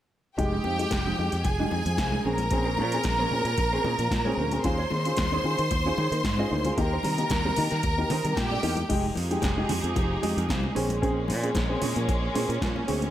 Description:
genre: disco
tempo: 113 BPM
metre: 4/4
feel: straight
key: F minor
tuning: A4 = 440 Hz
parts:
  - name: clear symphonic string section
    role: second line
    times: 0.4-8.9 s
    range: G4 to C6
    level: -28 LUFS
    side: right 1 dB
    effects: tape echo
  - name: dark baby grand piano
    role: accompaniment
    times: 0.4-13.1 s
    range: Bb2 to Ab4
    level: -31 LUFS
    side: left 1 dB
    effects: none
  - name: mellow electric guitar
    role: accompaniment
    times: 0.4-13.1 s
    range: Ab3 to Eb5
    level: -36 LUFS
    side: right 6 dB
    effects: analog chorus
  - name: fingered electric bass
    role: bass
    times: 0.4-13.1 s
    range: F1 to Eb3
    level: -30 LUFS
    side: equal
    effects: none
  - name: electro analog drum machine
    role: drums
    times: 0.4-13.1 s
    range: crash cymbal, hi-hat, kick drum, snare drum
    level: -31 LUFS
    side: equal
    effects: overdrive, gated reverb
  - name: congas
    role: percussion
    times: 0.4-13.1 s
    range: none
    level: -37 LUFS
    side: left 4 dB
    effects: none
  - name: bright studio string section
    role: sustained chords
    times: 8.9-13.1 s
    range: F3 to Ab4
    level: -32 LUFS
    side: right 1 dB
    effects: none
room: light reverb, studio ambience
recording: none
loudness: -24 LUFS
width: side -12 dB against mid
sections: 0.4-8.9 A section; 8.9-13.1 B section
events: none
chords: 0.4 Fm9; 2.3 Bbm9; 4.6 Eb7sus4; 6.8 Cm7/Eb; 8.9 Fm9; 10.8 Bbm9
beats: | 0.39 0.92 1.45 1.99 | 2.52 3.05 3.58 4.12 | 4.65 5.18 5.71 6.24 | 6.77 7.30 7.84 8.37 | 8.90 9.43 9.96 10.49 | 11.02 11.55 12.09 12.62

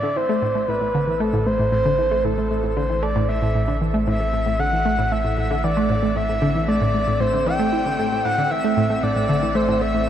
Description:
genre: ambient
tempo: 115 BPM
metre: 4/4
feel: straight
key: A minor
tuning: A4 = 436 Hz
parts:
  - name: breathy flute-like synth lead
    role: melody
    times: 0.0-10.1 s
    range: A4 to G5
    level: -22 LUFS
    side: equal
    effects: chorus, tape echo
  - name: evolving wavetable pad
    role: sustained chords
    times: 1.2-10.1 s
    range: A3 to A4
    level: -31 LUFS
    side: equal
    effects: chorus, built-in reverb
  - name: analog pluck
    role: riff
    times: 0.0-10.0 s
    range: A2 to E4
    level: -22 LUFS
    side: right 1 dB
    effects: chorus, phaser, tape echo
  - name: warm sub bass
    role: bass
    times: 0.0-10.1 s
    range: A1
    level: -27 LUFS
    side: equal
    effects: none
  - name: twinkling granular texture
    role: texture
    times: 0.3-10.1 s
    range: E5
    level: -38 LUFS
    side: right 1 dB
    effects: built-in reverb
room: moderate huge ambient reverb, RT60 7.7 s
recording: none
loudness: -18 LUFS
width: side -10 dB against mid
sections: 0.0-10.1 A section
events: fade-in on ambient pad 0.0-10.1; fade-in on synth texture 0.0-10.1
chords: 0.0 Am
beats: 0.42 0.94 1.46 | 1.99 2.51 3.03 3.55 | 4.07 4.59 5.12 5.64 | 6.16 6.68 7.20 7.72 | 8.25 8.77 9.29 9.81

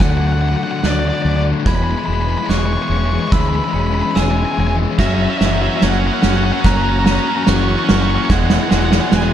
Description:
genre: post-rock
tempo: 72 BPM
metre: 4/4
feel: straight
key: unclear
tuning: A4 = 441 Hz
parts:
  - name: smooth overdriven lead guitar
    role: melody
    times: 0.0-9.3 s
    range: D5 to C#6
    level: -22 LUFS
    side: left 2 dB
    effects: digital delay
  - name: rich studio string section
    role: sustained chords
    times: 0.0-9.3 s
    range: D3 to D5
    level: -29 LUFS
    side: right 3 dB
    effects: none
  - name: glockenspiel with brass mallets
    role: arpeggios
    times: 0.0-9.3 s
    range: E6 to A#6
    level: -29 LUFS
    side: right 8 dB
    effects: digital delay
  - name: twelve-string electric guitar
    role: arpeggios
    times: 0.0-9.3 s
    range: E2 to C#4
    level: -25 LUFS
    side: left 4 dB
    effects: digital delay
  - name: crunchy overdriven guitar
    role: riff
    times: 0.0-9.3 s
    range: D3 to C#4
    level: -22 LUFS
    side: left 9 dB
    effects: none
  - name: growling fingered electric bass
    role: bass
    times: 0.0-9.3 s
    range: E1 to D2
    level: -18 LUFS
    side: right 1 dB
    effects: overdrive
  - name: loose indie drum kit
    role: drums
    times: 0.0-9.3 s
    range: kick drum, snare drum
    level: -17 LUFS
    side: right 1 dB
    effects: none
  - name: distorted electric guitar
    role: riff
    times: 5.0-9.3 s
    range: E3 to C#4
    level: -23 LUFS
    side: right 15 dB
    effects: overdrive
room: studio reverb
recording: dark, warm production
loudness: -13 LUFS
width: side -10 dB against mid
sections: 0.0-9.3 A section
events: build-up 0.0-9.3; drum fill 0.0-9.3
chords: 0.0 D; 1.7 C#m7/E; 5.0 F#7; 8.3 E7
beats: 0.02 0.85 | 1.68 2.51 3.34 4.17 | 4.99 5.82 6.65 7.48 | 8.30 9.13

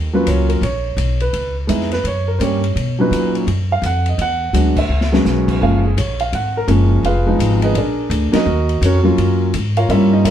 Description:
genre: jazz piano trio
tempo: 168 BPM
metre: 4/4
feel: swing 63% on 8ths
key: Eb minor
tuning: A4 = 442 Hz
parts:
  - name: upright bass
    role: bass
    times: 0.0-10.3 s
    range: F1 to B2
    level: -17 LUFS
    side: equal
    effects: none
  - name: warm concert grand piano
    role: melody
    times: 0.1-10.3 s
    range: A#2 to F#5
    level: -17 LUFS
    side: right 1 dB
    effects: none
  - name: open jazz drum kit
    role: drums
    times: 0.3-10.3 s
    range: crash cymbal, hi-hat, kick drum, ride cymbal, snare drum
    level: -27 LUFS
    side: left 2 dB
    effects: none
room: wet studio reverb, RT60 0.7 s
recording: heard from further back in the room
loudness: -14 LUFS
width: side -10 dB against mid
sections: 0.0-10.3 A section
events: band accent 4.7, 8.3; drum fill 4.9-5.3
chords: 0.0 Ebm9; 1.3 Dbm7; 2.0 Gb; 2.8 Bmaj7; 4.2 E9; 5.6 Gbmaj9; 7.0 Fm7b5; 7.8 Bb7b13; 8.5 Ebm9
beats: 0.26 0.62 0.98 | 1.33 1.69 2.04 2.40 | 2.76 3.11 3.47 3.83 | 4.18 4.54 4.90 5.25 | 5.61 5.97 6.32 6.68 | 7.04 7.39 7.75 8.11 | 8.46 8.82 9.18 9.54 | 9.89 10.25

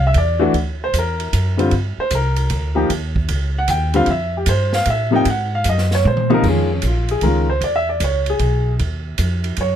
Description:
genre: jazz piano trio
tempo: 153 BPM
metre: 3/4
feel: swing 66% on 8ths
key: Db major from 6.4 s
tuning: A4 = 441 Hz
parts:
  - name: clear upright piano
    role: melody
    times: 0.0-9.8 s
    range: Db2 to G5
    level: -18 LUFS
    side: left 1 dB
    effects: none
  - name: upright bass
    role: bass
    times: 0.0-9.8 s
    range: Bb1 to Bb2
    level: -19 LUFS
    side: equal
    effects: none
  - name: open jazz drum kit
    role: drums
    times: 0.1-9.7 s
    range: crash cymbal, hi-hat, kick drum, ride cymbal, snare drum, toms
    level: -26 LUFS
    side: right 4 dB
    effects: none
room: little or no reverb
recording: close, detailed microphones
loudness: -16 LUFS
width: side -9 dB against mid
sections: 0.0-6.4 A section; 6.4-9.8 A section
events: upright piano solo 0.0-9.8; drum fill 6.0-6.4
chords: 0.0 Bbmaj9 (rootless); 0.5 D7b13; 1.7 Gm; 2.9 Eb7; 4.1 Fadd9; 5.3 Ab9; 6.4 Db69; 7.6 E6; 8.8 Ebmadd9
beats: 0.15 | 0.55 0.94 1.33 | 1.73 2.12 2.51 | 2.90 3.30 3.69 | 4.08 4.47 4.87 | 5.26 5.65 6.04 | 6.44 6.83 7.22 | 7.62 8.01 8.40 | 8.79 9.19 9.58

